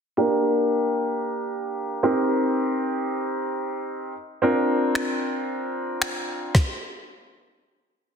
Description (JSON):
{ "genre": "dance-pop", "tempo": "113 BPM", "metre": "4/4", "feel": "straight", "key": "G minor", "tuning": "A4 = 443 Hz", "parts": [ { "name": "warm baby grand piano", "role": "accompaniment", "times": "0.2-6.5 s", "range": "Bb3 to Bb4", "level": "-22 LUFS", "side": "equal", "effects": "sidechain pumping, low-pass filter" }, { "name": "smooth R&B drum kit", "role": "drums", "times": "5.0-6.7 s", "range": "finger snaps, kick drum, snare drum", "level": "-24 LUFS", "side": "equal", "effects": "soft clipping on snare" } ], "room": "wet recital hall reverb, RT60 1.6 s, small room reverb", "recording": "dense, heavily limited modern master", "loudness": "-22 LUFS", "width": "side -6 dB against mid", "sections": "0.2-8.2 A section", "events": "filter sweep on grand piano 0.2-8.2", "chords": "0.2 Gm; 2.0 Cm7; 4.4 Bbadd9; 6.5 N.C." }